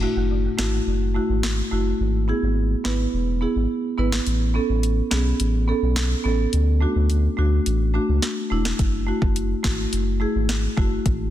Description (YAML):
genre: dancehall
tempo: 106 BPM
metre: 4/4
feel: straight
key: F# minor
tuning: A4 = 440 Hz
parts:
  - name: marimba with medium mallets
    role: accompaniment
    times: 0.0-10.9 s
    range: A3 to B4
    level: -24 LUFS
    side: right 1 dB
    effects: none
  - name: saturated sub bass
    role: bass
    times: 0.0-11.3 s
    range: E1 to D2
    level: -22 LUFS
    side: equal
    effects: none
  - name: afro-pop drum kit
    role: drums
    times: 0.6-11.2 s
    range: hi-hat, kick drum, snare drum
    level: -26 LUFS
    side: equal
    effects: none
room: digital ambience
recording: dense, heavily limited modern master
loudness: -19 LUFS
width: side -12 dB against mid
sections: 0.0-11.3 A section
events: break 0.0-8.8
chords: 0.0 F#m7; 2.0 E/G#; 4.3 Aadd9; 6.5 D; 8.8 F#m7